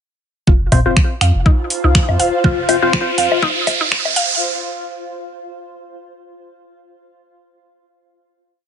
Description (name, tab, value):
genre	minimal techno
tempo	122 BPM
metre	4/4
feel	swing 56% on 16ths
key	unclear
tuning	A4 = 439 Hz
part	mallet-like synth pluck	riff	0.5-4.2 s	Eb4 to F5	-21 LUFS	equal	chorus, sidechain pumping, digital delay
part	punchy sub bass	bass	0.5-4.3 s	Eb1 to F2	-18 LUFS	equal	sidechain pumping
part	electronic kick drum	drums	0.5-4.0 s	none	-13 LUFS	equal	overdrive
part	riser	sound effects	1.7-4.4 s	none	-21 LUFS	right 4 dB	none
part	granular cloud pad	texture	1.3-4.4 s	F4 to F5	-22 LUFS	left 1 dB	built-in reverb, sidechain pumping
part	percussive organ stab	stabs	0.7-2.9 s	C4 to C5	-19 LUFS	left 3 dB	analog chorus, digital delay
part	garage drum kit	drums	0.7-4.3 s	finger snaps, hi-hat	-19 LUFS	right 1 dB	overdrive, high-pass filter on hats, high-pass filter on snare
part	electronic toms and woodblock	percussion	0.7-4.1 s	none	-20 LUFS	left 3 dB	digital delay
room	light reverb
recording	high-pass filter, nothing above 10.7 kHz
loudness	-13 LUFS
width	side -8 dB against mid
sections	0.5-4.4 build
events	build-up 0.5-4.4; filter sweep on synth arpeggio sound 0.5-4.4; filter sweep on synth stab 0.5-4.4; filter sweep 0.5-4.4; riser 1.7-4.4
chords	0.5 F5